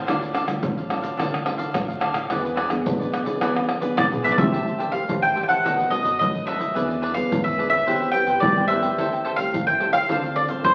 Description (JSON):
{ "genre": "samba and choro", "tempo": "108 BPM", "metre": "4/4", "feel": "straight", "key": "A minor from 4.5 s", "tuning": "A4 = 440 Hz", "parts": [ { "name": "cavaquinho", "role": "accompaniment", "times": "0.0-10.7 s", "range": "D4 to A5", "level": "-32 LUFS", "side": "equal", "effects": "none" }, { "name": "nylon-string guitar", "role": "accompaniment", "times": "0.0-10.7 s", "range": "A2 to C5", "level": "-30 LUFS", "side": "equal", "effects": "none" }, { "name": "sub bass with octave", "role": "bass", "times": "0.1-10.7 s", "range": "A1 to G2", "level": "-45 LUFS", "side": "equal", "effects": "none" }, { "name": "egg shaker, surdo, pandeiro and tamborim", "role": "percussion", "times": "0.1-10.7 s", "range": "none", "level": "-28 LUFS", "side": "equal", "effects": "none" }, { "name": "mandolin", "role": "melody", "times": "4.0-10.7 s", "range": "C5 to G5", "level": "-24 LUFS", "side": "equal", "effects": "none" } ], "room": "wet large studio reverb, RT60 1.4 s", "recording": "very old 78 rpm record, vinyl crackle", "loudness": "-22 LUFS", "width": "mono", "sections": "0.0-4.5 A section; 4.5-10.7 B section", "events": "drum fill 4.0-4.5", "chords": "0.1 Dm; 2.3 E7; 4.5 Am7; 5.6 B7; 6.8 E7; 7.9 Cmaj7; 9.0 Am7/C; 10.1 Dm7" }